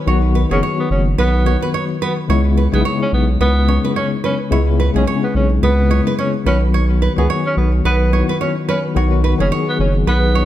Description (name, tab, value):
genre	afrobeats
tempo	108 BPM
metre	4/4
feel	swing 58% on 16ths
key	unclear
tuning	A4 = 440 Hz
part	mellow tine electric piano	accompaniment	0.0-10.4 s	C#3 to G#4	-19 LUFS	left 5 dB	medium tremolo
part	nylon-string guitar	riff	0.1-10.4 s	G#4 to C#5	-22 LUFS	right 5 dB	ping-pong delay
part	saturated sub bass	bass	0.1-10.4 s	F#1 to C#2	-15 LUFS	equal	none
part	breathy tenor saxophone	melody	0.5-10.4 s	B3 to C#4	-22 LUFS	right 1 dB	ping-pong delay
room	moderate recital hall reverb, RT60 1.5 s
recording	none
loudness	-14 LUFS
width	side -12 dB against mid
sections	0.0-10.4 A section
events	none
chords	0.0 B; 2.3 C#m7; 6.5 B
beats	| 0.07 0.62 1.18 1.74 | 2.29 2.85 3.40 3.96 | 4.51 5.07 5.62 6.18 | 6.74 7.29 7.85 8.40 | 8.96 9.51 10.07